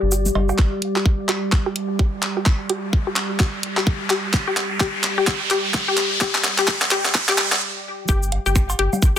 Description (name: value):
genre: minimal techno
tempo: 128 BPM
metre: 4/4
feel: swing 60% on 16ths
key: unclear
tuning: A4 = 442 Hz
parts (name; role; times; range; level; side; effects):
- rubbery square bass; bass; 0.0-0.5, 8.1-9.2 s; G1; -22 LUFS; equal; sidechain pumping
- warbly tape-like pad; texture; 0.0-7.6 s; G3 to D6; -28 LUFS; equal; chorus, built-in reverb, sidechain pumping
- resonant blip pluck; riff; 0.1-9.2 s; G4; -24 LUFS; left 3 dB; chorus, sidechain pumping, dub echo
- garage drum kit; drums; 0.1-9.2 s; cabasa, finger snaps, handclaps, hi-hat; -22 LUFS; equal; overdrive
- congas, cowbell, bongos and woodblock; percussion; 0.3-0.6, 8.3-9.0 s; none; -26 LUFS; equal; tape echo
- electronic kick drum; drums; 0.6-9.1 s; none; -18 LUFS; equal; overdrive
- riser; sound effects; 2.3-7.6 s; none; -26 LUFS; equal; none
room: moderate small room reverb, RT60 0.5 s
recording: dense, heavily limited modern master, high-pass filter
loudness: -18 LUFS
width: side -10 dB against mid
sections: 0.6-8.1 A section; 8.1-9.2 B section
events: build-up 0.6-8.1; drum fill 0.6-7.6; filter sweep on synth arpeggio sound 0.6-8.1; filter sweep 0.6-8.1; riser 2.3-7.6; stop 7.6-8.1; drop 8.1-9.2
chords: 0.0 G5